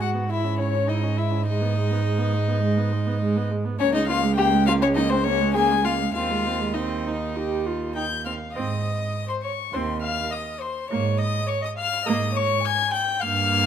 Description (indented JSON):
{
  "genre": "quick classical-period movement for string quartet",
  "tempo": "102 BPM",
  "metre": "4/4",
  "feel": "straight",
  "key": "G# minor, Ab major from 3.8 s",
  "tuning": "A4 = 440 Hz",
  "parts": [
    { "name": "warm violin", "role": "melody", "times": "0.0-13.7 s", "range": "C5 to Ab6", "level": "-26 LUFS", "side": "left 9 dB", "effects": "none" },
    { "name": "dark violin", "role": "second line", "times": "0.0-13.7 s", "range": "C4 to Ab5", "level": "-28 LUFS", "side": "left 2 dB", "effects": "none" },
    { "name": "warm viola", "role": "accompaniment", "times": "0.0-13.7 s", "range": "Ab3 to G4", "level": "-28 LUFS", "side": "right 4 dB", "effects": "none" },
    { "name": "rich cello", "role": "bass", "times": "0.0-13.7 s", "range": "Db2 to Ab2", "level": "-26 LUFS", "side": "right 4 dB", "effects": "none" }
  ],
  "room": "moderate recital hall reverb, RT60 1.4 s",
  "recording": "close, detailed microphones",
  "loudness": "-21 LUFS",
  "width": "side -9 dB against mid",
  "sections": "0.0-8.6 A section; 8.6-13.7 B section",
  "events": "none",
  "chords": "0.3 C#m/G#; 1.5 G#m; 3.8 Bbm7/Db; 6.2 Ab/Eb; 7.4 Eb; 8.6 Ab; 10.9 Db69/Ab",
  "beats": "0.31 0.89 | 1.48 2.06 2.65 3.23 | 3.81 4.39 4.97 5.56 | 6.15 6.75 7.36 7.96 | 8.56 9.15 9.74 10.33 | 10.91 11.49 12.07 12.64 | 13.22"
}